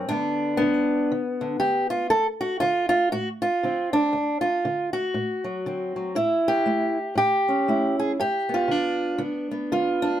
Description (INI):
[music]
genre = acoustic country blues, solo or duo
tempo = 119 BPM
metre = 4/4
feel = swing 60% on 8ths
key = unclear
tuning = A4 = 440 Hz
[part]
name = fingerpicked old ladder-braced acoustic guitar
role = solo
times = 0.0-10.2 s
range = D2 to A4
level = -22 LUFS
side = equal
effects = none
[sound]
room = light reverb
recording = none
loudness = -22 LUFS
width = side -11 dB against mid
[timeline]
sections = 0.0-10.2 A section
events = none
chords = 0.1 G; 2.1 D7; 6.2 A7; 8.2 G7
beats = | 0.10 0.61 1.11 1.61 | 2.12 2.62 3.13 3.63 | 4.14 4.64 5.15 5.66 | 6.16 6.67 7.18 7.68 | 8.19 8.70 9.20 9.71